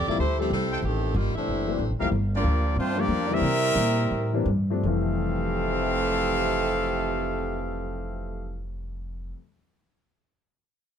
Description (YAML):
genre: jazz, big band swing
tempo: 159-188 BPM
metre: 4/4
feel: swing 62% on 8ths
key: F major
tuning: A4 = 438 Hz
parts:
  - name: warm saxophone section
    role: melody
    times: 0.0-2.0 s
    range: Eb3 to D5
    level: -28 LUFS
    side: equal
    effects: none
  - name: upright bass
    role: bass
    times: 0.0-9.3 s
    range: D1 to C3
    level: -28 LUFS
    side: equal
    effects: none
  - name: warm grand piano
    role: accompaniment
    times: 0.1-9.4 s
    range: F2 to G4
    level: -31 LUFS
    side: left 6 dB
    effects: none
  - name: mellow trumpet section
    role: stabs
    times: 0.7-2.1 s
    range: G4 to G5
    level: -33 LUFS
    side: equal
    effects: none
  - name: warm trombone section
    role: second line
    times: 1.3-8.6 s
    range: F2 to Bb4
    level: -29 LUFS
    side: right 3 dB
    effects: none
  - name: clear trumpet section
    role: melody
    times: 2.3-8.6 s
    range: A3 to F5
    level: -27 LUFS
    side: left 1 dB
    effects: none
room: little or no reverb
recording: close, detailed microphones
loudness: -23 LUFS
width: side -8 dB against mid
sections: 0.0-2.1 A section; 2.1-4.8 B section; 4.8-7.9 C section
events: slowing down 2.1-4.8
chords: 0.0 Fmaj9; 0.8 Am7b5; 1.5 D7; 2.1 Gm7; 4.8 Fmaj9